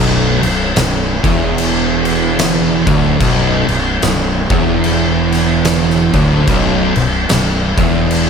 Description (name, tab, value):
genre	stoner and doom metal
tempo	73 BPM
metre	4/4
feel	swing 59% on 8ths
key	B minor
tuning	A4 = 441 Hz
part	crunchy overdriven guitar	riff	0.0-8.3 s	B1 to E2	-19 LUFS	right 1 dB	none
part	thick fuzz guitar	riff	0.0-8.3 s	B1 to E2	-19 LUFS	left 8 dB	distortion
part	thick fuzz guitar	riff	0.0-8.3 s	B1 to E2	-18 LUFS	right 10 dB	distortion
part	fuzz fingered electric bass	bass	0.0-8.3 s	B0 to E1	-19 LUFS	equal	overdrive
part	oversized low-tuned drum kit	drums	0.4-8.3 s	crash cymbal, kick drum, snare drum	-16 LUFS	equal	none
room	little or no reverb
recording	none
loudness	-11 LUFS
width	side -6 dB against mid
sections	0.0-8.3 A section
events	none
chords	0.0 Bm